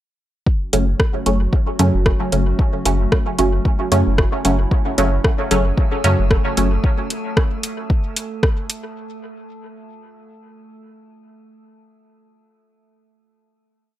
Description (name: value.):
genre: dub techno.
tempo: 113 BPM.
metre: 4/4.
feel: swing 56% on 16ths.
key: F# minor.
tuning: A4 = 440 Hz.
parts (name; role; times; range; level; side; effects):
warbly tape-like pad; sustained chords; 0.9-6.8 s; F#3 to F#4; -30 LUFS; right 1 dB; chorus, built-in reverb, sidechain pumping.
electronic kick drum; drums; 0.5-8.5 s; none; -18 LUFS; equal; overdrive.
filtered dub chord stab; stabs; 0.7-6.7 s; C#3 to C#4; -20 LUFS; right 1 dB; chorus, phaser, dub echo.
soft dub sub bass; bass; 0.7-6.8 s; F#1 to F#2; -18 LUFS; equal; tube saturation, sidechain pumping.
deep house drum kit; drums; 0.7-8.8 s; hi-hat, rim click; -22 LUFS; equal; overdrive, dub echo.
metallic inharmonic drone; texture; 5.2-9.0 s; A3 to A4; -32 LUFS; right 1 dB; chorus, built-in reverb, sidechain pumping.
room: digital ambience.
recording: dry, gritty hardware recording, transformer saturation.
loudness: -16 LUFS.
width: side -13 dB against mid.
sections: 0.5-9.0 groove.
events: none.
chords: 0.5 F#m.